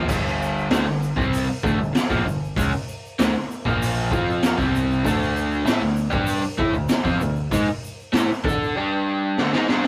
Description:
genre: garage rock duo or trio.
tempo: 97 BPM.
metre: 4/4.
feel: straight.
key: unclear.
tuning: A4 = 441 Hz.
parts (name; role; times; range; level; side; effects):
crunchy overdriven guitar; riff; 0.0-9.9 s; G2 to D5; -24 LUFS; equal; none.
growling picked electric bass; bass; 0.0-8.7 s; G1 to D3; -33 LUFS; equal; overdrive.
raw garage drum kit; drums; 0.1-9.9 s; crash cymbal, hi-hat, kick drum, snare drum; -26 LUFS; equal; none.
egg shaker; percussion; 0.1-8.7 s; none; -46 LUFS; equal; none.
room: moderate small room reverb, RT60 0.5 s.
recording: rough rehearsal-room recording.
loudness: -22 LUFS.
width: mono.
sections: 0.0-9.9 A section.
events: drum fill 9.4-9.9.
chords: 0.0 G5; 5.0 D5; 8.8 G5.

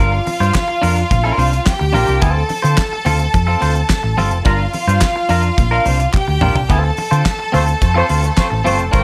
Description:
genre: disco.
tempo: 107 BPM.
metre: 4/4.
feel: straight.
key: D minor.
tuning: A4 = 437 Hz.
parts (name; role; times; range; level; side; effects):
clear studio string section; second line; 0.0-9.0 s; F4 to A5; -22 LUFS; equal; none.
clean electric guitar; accompaniment; 0.0-9.0 s; C4 to C5; -23 LUFS; equal; none.
hollow-body short-scale fingered electric bass; bass; 0.0-9.0 s; F1 to D3; -19 LUFS; equal; none.
damped 70s drum kit; drums; 0.0-9.0 s; handclaps, hi-hat, kick drum, snare drum, toms; -21 LUFS; equal; none.
congas; percussion; 0.3-8.8 s; none; -28 LUFS; equal; none.
group handclap; percussion; 0.5-8.5 s; none; -32 LUFS; equal; none.
warm horn section; stabs; 7.5-8.8 s; A3 to C5; -21 LUFS; equal; tape echo, plate reverb.
room: light reverb, studio reverb.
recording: none.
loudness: -15 LUFS.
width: mono.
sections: 0.0-9.0 A section.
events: drum fill 6.1-6.7.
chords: 0.0 Gm7; 2.2 Dm7; 4.5 Gm7; 6.7 Dm7.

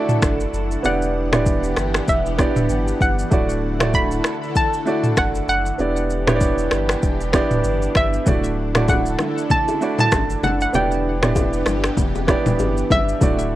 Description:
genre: afrobeats.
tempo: 97 BPM.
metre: 4/4.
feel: swing 58% on 16ths.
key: unclear.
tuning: A4 = 441 Hz.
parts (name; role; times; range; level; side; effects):
hollow square pluck; melody; 0.0-13.6 s; E5 to B5; -23 LUFS; equal; chorus, ping-pong delay.
clear baby grand piano; accompaniment; 0.0-13.6 s; A3 to D5; -22 LUFS; right 2 dB; none.
lush unison pad; sustained chords; 0.0-13.6 s; D3 to F#5; -27 LUFS; equal; chorus, phaser.
afro-pop drum kit; drums; 0.1-13.5 s; finger snaps, kick drum, rim click, shaker, toms; -20 LUFS; equal; none.
warm sub bass; bass; 0.2-13.6 s; D1 to G1; -25 LUFS; equal; none.
congas and bongos; percussion; 8.3-13.4 s; none; -26 LUFS; left 5 dB; none.
room: little or no reverb.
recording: worn, warbling old tape, cassette tape, warbly pitch drift.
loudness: -17 LUFS.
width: side -14 dB against mid.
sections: 0.0-13.6 A section.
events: none.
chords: 0.0 Dadd9; 0.8 Em7; 3.3 Dadd9; 5.8 Em7; 8.3 Dadd9; 10.7 Em7.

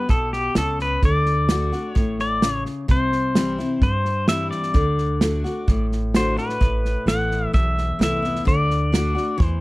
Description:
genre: honky-tonk and classic country.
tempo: 129 BPM.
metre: 4/4.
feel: straight.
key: D mixolydian.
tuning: A4 = 440 Hz.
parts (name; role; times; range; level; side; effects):
pedal steel guitar; melody; 0.0-9.6 s; G4 to F#5; -24 LUFS; left 1 dB; none.
picked steel-string acoustic guitar; accompaniment; 0.0-9.6 s; E2 to F#4; -25 LUFS; left 2 dB; none.
upright bass; bass; 0.1-9.6 s; A1 to G2; -24 LUFS; equal; none.
natural country drum kit; drums; 0.1-9.5 s; hi-hat, kick drum, snare drum; -20 LUFS; right 1 dB; none.
room: small room ambience.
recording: dry, close 1970s-style studio recording.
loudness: -18 LUFS.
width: side -20 dB against mid.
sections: 0.0-2.9 A section; 2.9-9.6 B section.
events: none.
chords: 0.0 G; 1.0 D; 2.9 C; 4.7 D; 6.6 Asus2; 8.5 D.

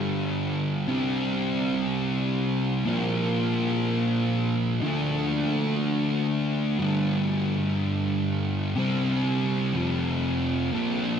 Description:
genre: rock.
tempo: free time.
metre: none.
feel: none.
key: Bb major.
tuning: A4 = 440 Hz.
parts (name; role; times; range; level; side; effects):
fuzz guitar; solo; 0.0-11.2 s; F2 to D4; -23 LUFS; equal; distortion, analog chorus, ping-pong delay.
room: wet huge ambient reverb, RT60 7.5 s.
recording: dreamy mix soaked in reverb.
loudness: -23 LUFS.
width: side -8 dB against mid.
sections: 0.0-10.7 A section.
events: none.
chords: 0.0 G5; 0.9 C5; 2.9 Bb5; 4.8 D5; 6.8 G5; 8.8 C5; 9.7 F5.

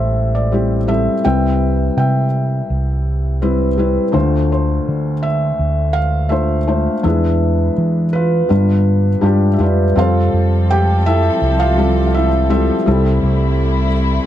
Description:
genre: acoustic folk-pop ballad.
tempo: 83 BPM.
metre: 4/4.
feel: straight.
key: unclear.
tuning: A4 = 443 Hz.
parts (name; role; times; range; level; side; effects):
felt-muted upright piano; melody; 0.0-14.3 s; F1 to G5; -16 LUFS; left 1 dB; none.
fingered electric bass; bass; 0.0-14.2 s; A1 to E3; -16 LUFS; right 1 dB; none.
dark studio string section; sustained chords; 10.0-14.3 s; C3 to A4; -23 LUFS; left 2 dB; none.
room: little or no reverb.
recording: close, detailed microphones.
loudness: -13 LUFS.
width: side -11 dB against mid.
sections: 0.0-10.0 A section; 10.0-14.3 B section.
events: none.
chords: 0.0 Am7; 1.2 Cmaj7; 4.1 Dm7; 7.0 E7; 8.5 G7; 10.0 Fadd9; 12.9 C6.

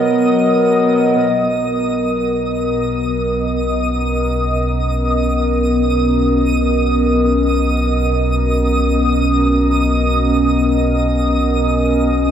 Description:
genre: ambient.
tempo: free time.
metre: none.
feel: none.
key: B major.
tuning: A4 = 441 Hz.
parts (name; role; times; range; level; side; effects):
warbly tape-like pad; sustained chords; 0.0-12.3 s; B2 to D#5; -15 LUFS; equal; chorus, built-in reverb, phaser, shimmer reverb.
hand-pumped harmonium; drone; 0.0-1.3 s; F#3 to B3; -24 LUFS; equal; none.
twinkling granular texture; texture; 0.0-12.3 s; D#6; -24 LUFS; equal; built-in reverb, lush chorus, shimmer reverb.
warm sub bass; bass; 1.2-12.3 s; B1; -20 LUFS; equal; none.
room: wet lush hall reverb, RT60 2.8 s.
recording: dreamy mix soaked in reverb.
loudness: -14 LUFS.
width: side -9 dB against mid.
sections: 0.0-1.2 A section; 1.2-12.3 B section.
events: filter sweep on ambient pad 1.2-12.3.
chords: 0.0 D#m/B; 1.2 Bmaj7.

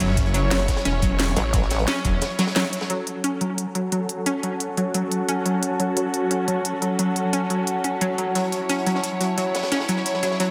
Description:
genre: dark technical drum and bass.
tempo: 176 BPM.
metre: 4/4.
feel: straight.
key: F# minor.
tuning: A4 = 440 Hz.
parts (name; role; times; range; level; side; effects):
warm studio string section; sustained chords; 0.0-10.5 s; F#3 to C#5; -29 LUFS; equal; sidechain pumping, low-pass filter.
analog pluck; arpeggios; 0.0-10.5 s; F#3 to C#4; -28 LUFS; equal; chorus, sidechain pumping, analog delay.
snarling distorted saw bass; bass; 0.0-2.2 s; E1 to G1; -26 LUFS; equal; distortion, overdrive.
crunchy breakbeat drum kit; drums; 0.0-2.9, 8.4-10.5 s; hi-hat, snare drum; -35 LUFS; equal; high-pass filter on hats, high-pass filter on snare, high-pass filter on room.
drum and bass drum kit; drums; 0.0-10.5 s; hi-hat, snare drum; -29 LUFS; equal; none.
electronic kick drum; drums; 0.2-2.1 s; none; -26 LUFS; equal; none.
vowel-sweep wobble bass; bass; 1.4-1.9 s; A1; -25 LUFS; equal; chorus.
warbly tape-like pad; texture; 3.8-10.5 s; F#4 to A5; -31 LUFS; equal; chorus, built-in reverb, sidechain pumping.
room: wet lush hall reverb, RT60 2.0 s.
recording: dreamy mix soaked in reverb.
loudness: -23 LUFS.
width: mono.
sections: 0.0-2.9 A section; 2.9-10.5 B section.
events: drop 0.0-2.9; filter sweep on string section 2.9-10.5.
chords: 0.0 F#m.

